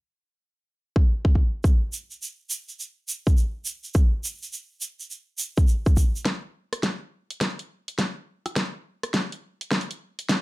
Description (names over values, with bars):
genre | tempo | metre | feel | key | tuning
glitch hop | 104 BPM | 4/4 | swing 64% on 16ths | none | none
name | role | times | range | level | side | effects
electronic kick drum | drums | 1.0-10.4 s | none | -20 LUFS | equal | high-pass filter on kick
tube shaker | percussion | 1.6-6.2 s | none | -31 LUFS | right 3 dB | none
pop drum kit | drums | 6.3-10.4 s | hi-hat, rim click, snare drum | -25 LUFS | equal | low-pass filter on hats, low-pass filter on snare
room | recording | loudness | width
little or no reverb | high-pass filter | -23 LUFS | side -20 dB against mid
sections
0.0-6.3 A section; 6.3-10.4 B section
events
build-up 6.3-10.4; drum fill 6.3-10.4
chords
none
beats
0.49 1.06 | 1.64 2.22 2.79 3.37 | 3.95 4.53 5.10 5.68 | 6.26 6.83 7.41 7.99 | 8.56 9.14 9.72 10.29